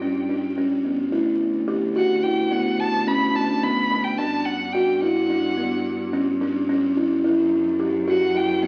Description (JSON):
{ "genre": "contemporary instrumental, chamber music in an uneven meter", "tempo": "216 BPM (eighths)", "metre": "11/8", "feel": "straight", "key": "G lydian", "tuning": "A4 = 440 Hz", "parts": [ { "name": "clear violin", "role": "melody", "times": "0.0-8.7 s", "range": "F#5 to B5", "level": "-28 LUFS", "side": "equal", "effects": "none" }, { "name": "buzzing kalimba", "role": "arpeggios", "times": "0.0-8.7 s", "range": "B3 to G4", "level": "-23 LUFS", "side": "equal", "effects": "none" }, { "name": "clear cello", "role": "bass", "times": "0.0-8.7 s", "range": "D2 to G2", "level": "-32 LUFS", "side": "equal", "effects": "none" } ], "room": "wet recital hall reverb, RT60 1.5 s", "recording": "very old 78 rpm record, vinyl crackle", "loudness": "-22 LUFS", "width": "mono", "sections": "0.0-1.1 A section; 1.1-8.7 B section", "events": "none", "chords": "0.0 G; 1.1 Dsus2; 4.2 Gmaj7#11; 7.2 F#7(no3)", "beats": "0.01 0.29 0.57 0.85 | 1.12 1.40 1.68 1.96 2.24 2.51 2.79 3.07 3.35 3.63 3.90 | 4.18 4.46 4.74 5.02 5.29 5.57 5.85 6.13 6.41 6.68 6.96 | 7.24 7.51 7.79 8.07 8.35 8.63" }